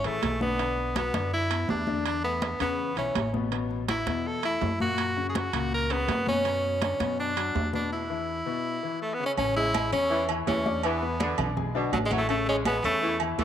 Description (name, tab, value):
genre	latin, salsa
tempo	164 BPM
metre	4/4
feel	straight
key	A major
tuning	A4 = 440 Hz
part	breathy tenor saxophone	melody	0.0-13.4 s	F#3 to A#4	-28 LUFS	equal	none
part	bright upright piano	accompaniment	0.0-13.4 s	Bb2 to D6	-33 LUFS	left 10 dB	none
part	upright bass	bass	0.0-13.4 s	A1 to F#2	-33 LUFS	right 1 dB	none
part	congas	percussion	0.0-13.4 s	none	-33 LUFS	equal	none
part	timbales and agogo bells	percussion	0.0-13.4 s	none	-35 LUFS	right 12 dB	none
part	mellow saxophone section	second line	9.6-13.4 s	B2 to G#3	-31 LUFS	equal	none
room	wet spring reverb, RT60 2.2 s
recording	1960s-style stereo with parts hard left and right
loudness	-25 LUFS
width	side -10 dB against mid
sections	0.0-9.4 A section; 9.4-13.4 B section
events	break 7.9-9.4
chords	0.0 C#m (rootless); 0.6 Bm; 2.1 E7sus4; 2.8 E5; 3.5 Asus2; 5.0 F#; 6.4 Bmadd9/F#; 7.9 E5; 9.4 Amaj7; 10.8 E7; 12.3 Amaj7